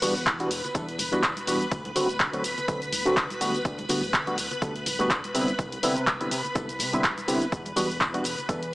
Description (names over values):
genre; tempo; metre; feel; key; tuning
filtered disco house; 124 BPM; 4/4; swing 56% on 16ths; E minor; A4 = 441 Hz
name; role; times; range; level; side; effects
barky reed electric piano; accompaniment; 0.0-8.6 s; D3 to B4; -27 LUFS; equal; overdrive, fast tremolo, phaser, sidechain pumping
string machine, full ensemble; sustained chords; 0.0-8.7 s; B4 to B5; -32 LUFS; equal; ensemble chorus, vintage 12-bit sampler grit, sidechain pumping
fat analog bass; bass; 0.0-8.7 s; D1 to C3; -35 LUFS; equal; sidechain pumping
punchy analog drum machine; drums; 0.0-8.7 s; handclaps, hi-hat, shaker; -27 LUFS; equal; sidechain pumping on hats, sidechain pumping on cymbals, sidechain pumping on perc
congas and tambourine; percussion; 0.0-8.7 s; none; -41 LUFS; right 1 dB; none
electronic kick drum; drums; 0.3-8.6 s; none; -32 LUFS; equal; none
room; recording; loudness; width
light reverb; small speaker sound; -24 LUFS; side -20 dB against mid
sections
0.0-8.7 A section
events
none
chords
0.0 Em9; 1.7 D7; 3.4 Gmaj9/D; 5.3 Cmaj9; 7.5 Em9